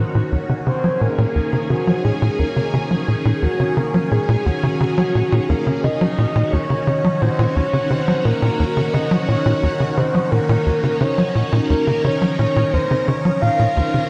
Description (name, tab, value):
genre	ambient, sequencer-driven space music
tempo	87 BPM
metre	4/4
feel	straight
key	Eb dorian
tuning	A4 = 436 Hz
part	phased string machine	sustained chords	0.0-14.1 s	Eb3 to Bb4	-26 LUFS	equal	ensemble chorus, phaser
part	tight sequencer bass	riff	0.0-14.0 s	Eb2 to Gb3	-21 LUFS	equal	subtle chorus, delay
part	pulsing gated texture	texture	4.0-14.1 s	none	barely audible	none	none
part	breathy flute-like synth lead	melody	0.7-14.1 s	Gb4 to F5	-24 LUFS	equal	subtle chorus, cassette tape, delay
room	wet plate reverb, RT60 2.9 s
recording	echo-heavy mix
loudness	-18 LUFS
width	mono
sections	0.0-14.1 A section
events	none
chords	0.0 Ebm7